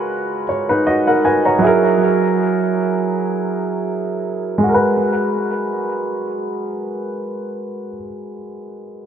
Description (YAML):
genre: R&B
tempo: 79 BPM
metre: 4/4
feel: swing 54% on 16ths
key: G# minor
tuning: A4 = 440 Hz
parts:
  - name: warm baby grand piano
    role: accompaniment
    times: 0.0-9.1 s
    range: F#3 to A#5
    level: -17 LUFS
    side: right 1 dB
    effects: low-pass filter, tape echo
room: light reverb, digital ambience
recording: echo-heavy mix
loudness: -16 LUFS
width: side -8 dB against mid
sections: 0.0-4.7 A section; 4.7-7.7 B section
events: filter sweep on grand piano 0.0-4.7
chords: 0.0 G#m9; 1.6 F#9; 4.7 G#m9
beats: 0.10 0.86 | 1.62 2.38 3.14 3.90 | 4.66 5.42 6.18 6.93